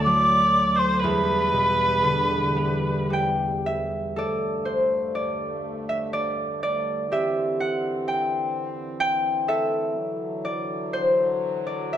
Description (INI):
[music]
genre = celtic folk, Celtic slow air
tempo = 54-64 BPM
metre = 3/4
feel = rubato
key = unclear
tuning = A4 = 440 Hz
[part]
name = mellow wooden flute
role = melody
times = 0.0-3.1 s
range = B5 to D6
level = -21 LUFS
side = right 1 dB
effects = none
[part]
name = rich viola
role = second line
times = 0.0-3.1 s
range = B4 to D5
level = -28 LUFS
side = left 2 dB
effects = none
[part]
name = concert harp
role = accompaniment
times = 0.0-12.0 s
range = D2 to G5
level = -24 LUFS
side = equal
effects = none
[part]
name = mellow French horn section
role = sustained chords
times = 0.0-12.0 s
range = D2 to C4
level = -33 LUFS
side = equal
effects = none
[sound]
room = moderate recital hall reverb, RT60 1.4 s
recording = none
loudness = -21 LUFS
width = side -10 dB against mid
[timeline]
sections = 0.0-4.1 A section; 4.1-12.0 B section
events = harp solo 4.1-12.0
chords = 0.0 D; 1.0 Em7; 4.1 Gsus2; 7.1 Cadd9